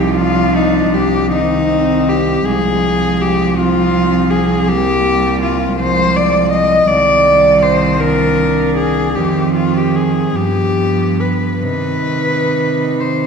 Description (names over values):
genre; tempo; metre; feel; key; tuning
classical, lyrical piece for cello ensemble; 43-56 BPM (dotted quarters); 12/8; rubato; C minor; A4 = 440 Hz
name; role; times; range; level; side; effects
warm cello; melody; 0.0-13.3 s; Eb4 to Eb5; -15 LUFS; left 2 dB; none
warm cello; second line; 0.0-13.3 s; G3 to Eb4; -20 LUFS; right 2 dB; none
warm cello; accompaniment; 0.0-13.3 s; Eb3 to G3; -20 LUFS; right 3 dB; none
warm cello; bass; 0.0-13.3 s; C2 to C3; -18 LUFS; right 1 dB; none
room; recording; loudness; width
wet scoring stage reverb, RT60 1.9 s; heard from further back in the room; -12 LUFS; side -6 dB against mid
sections
0.0-13.3 A section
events
none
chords
0.0 Cm; 2.5 Fm/C; 6.9 Cm; 9.2 F5; 10.3 G7; 11.6 Cm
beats
0.16 1.33 | 2.45 3.57 4.68 5.79 | 6.89 8.00 9.16 10.34 | 11.64 12.99